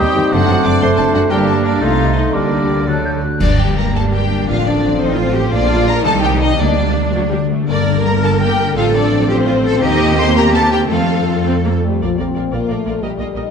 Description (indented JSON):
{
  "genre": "classical, dramatic, fast romantic movement for symphony orchestra",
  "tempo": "105-124 BPM (dotted quarters)",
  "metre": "6/8",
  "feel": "rubato",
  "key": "G minor, Bb major from 9.8 s",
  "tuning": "A4 = 440 Hz",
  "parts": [
    { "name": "warm symphonic violin section", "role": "melody", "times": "0.0-13.4 s", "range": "C5 to D6", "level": "-21 LUFS", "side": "left 3 dB", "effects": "none" },
    { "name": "clear clarinet", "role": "second line", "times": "0.0-3.2 s", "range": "D4 to G4", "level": "-24 LUFS", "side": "right 1 dB", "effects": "none" },
    { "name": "clear oboe", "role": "second line", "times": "0.0-3.2 s", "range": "A4 to C5", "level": "-26 LUFS", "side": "right 2 dB", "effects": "none" },
    { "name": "mellow silver concert flute", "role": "second line", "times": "0.0-3.4 s", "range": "C6 to G6", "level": "-24 LUFS", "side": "equal", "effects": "none" },
    { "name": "rich studio violin section", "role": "second line", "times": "0.0-13.5 s", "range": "C4 to D5", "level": "-23 LUFS", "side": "left 2 dB", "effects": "none" },
    { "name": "clear symphonic viola section", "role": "accompaniment", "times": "0.0-13.4 s", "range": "D3 to Eb5", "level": "-21 LUFS", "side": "right 1 dB", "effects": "none" },
    { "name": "dark bassoon", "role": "accompaniment", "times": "0.0-3.2 s", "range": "F#3 to A3", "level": "-20 LUFS", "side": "right 3 dB", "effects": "none" },
    { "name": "warm French horn section", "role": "sustained chords", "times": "0.0-3.2, 11.8-13.5 s", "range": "F3 to G4", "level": "-22 LUFS", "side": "left 4 dB", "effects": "none" },
    { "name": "concert harp", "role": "arpeggios", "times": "0.0-13.5 s", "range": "F#2 to Eb5", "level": "-20 LUFS", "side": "left 8 dB", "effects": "none" },
    { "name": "clear symphonic cello section", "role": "bass", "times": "0.0-13.4 s", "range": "Eb2 to Bb4", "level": "-21 LUFS", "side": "right 3 dB", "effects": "none" },
    { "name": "rich symphonic double bass section", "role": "bass", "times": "0.0-13.4 s", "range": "F#1 to G2", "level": "-19 LUFS", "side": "right 4 dB", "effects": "none" },
    { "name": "clash cymbals and concert bass drum", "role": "percussion", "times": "3.4-4.1 s", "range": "none", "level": "-20 LUFS", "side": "right 1 dB", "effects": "none" }
  ],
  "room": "wet scoring stage reverb, RT60 1.7 s",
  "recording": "dark, warm production",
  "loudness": "-12 LUFS",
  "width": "side -6 dB against mid",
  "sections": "0.0-3.4 A section; 3.4-12.0 B section; 12.0-13.5 C section",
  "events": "band accent 3.4-3.8",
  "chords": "0.3 D7/F#; 1.3 Gm; 1.8 Adim/C; 2.3 Gm/D; 2.9 D; 3.4 Gm; 4.5 F/A; 5.5 Bb; 6.1 Cm; 6.6 Gm/D; 7.1 D5; 7.7 Gm; 8.8 F/A; 9.8 Cm7/Eb; 10.9 F; 12.0 Bb",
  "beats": "| 0.33 0.82 | 1.31 1.82 | 2.34 2.88 | 3.41 3.96 | 4.48 5.01 | 5.53 6.05 | 6.60 7.14 | 7.69 8.23 | 8.77 9.30 | 9.82 10.36 | 10.91 11.47 | 12.03 12.53 | 13.03"
}